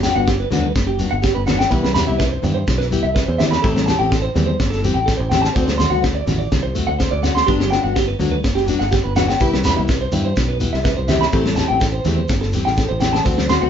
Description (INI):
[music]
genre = highlife guitar band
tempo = 125 BPM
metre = 4/4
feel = straight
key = G major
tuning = A4 = 436 Hz
[part]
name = picked plugged-in steel-string acoustic guitar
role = accompaniment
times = 0.0-13.7 s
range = E3 to G4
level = -23 LUFS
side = left 5 dB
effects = none
[part]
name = electric guitar at the edge of break-up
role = arpeggios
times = 0.0-13.7 s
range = G4 to C6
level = -21 LUFS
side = right 2 dB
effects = tremolo
[part]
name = fingered electric bass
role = bass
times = 0.0-13.7 s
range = F#1 to G2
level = -22 LUFS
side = equal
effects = none
[part]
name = tight funk drum kit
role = drums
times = 0.0-13.6 s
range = kick drum, snare drum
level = -20 LUFS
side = equal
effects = none
[part]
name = shekere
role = percussion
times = 0.0-13.6 s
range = none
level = -27 LUFS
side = right 1 dB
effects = none
[part]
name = congas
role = percussion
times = 0.2-13.7 s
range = none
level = -27 LUFS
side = equal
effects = none
[sound]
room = moderate studio reverb, RT60 0.7 s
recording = band playing live in one room, nothing above 7.6 kHz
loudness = -15 LUFS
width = side -8 dB against mid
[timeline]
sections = 0.0-13.7 A section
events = none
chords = 0.0 Gmaj7; 1.7 Cmaj7; 3.6 Am7; 5.6 D7; 7.5 Gmaj7; 9.4 Cmaj7; 11.3 Am7